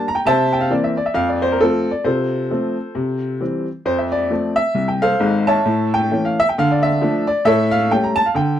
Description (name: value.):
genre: jazz, stride piano.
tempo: 133 BPM.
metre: 4/4.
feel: swing 59% on 8ths.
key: F major.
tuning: A4 = 440 Hz.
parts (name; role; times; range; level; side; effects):
clear upright piano; solo; 0.0-8.6 s; Ab1 to Bb5; -16 LUFS; equal; none.
room: light reverb.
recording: dry, close 1970s-style studio recording.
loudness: -16 LUFS.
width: side -10 dB against mid.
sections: 0.0-3.9 A section; 3.9-8.6 A section.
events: none.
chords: 0.2 C7; 1.1 F; 2.0 F/C; 3.0 C; 3.9 F; 5.6 A; 6.5 Dm; 7.4 A7.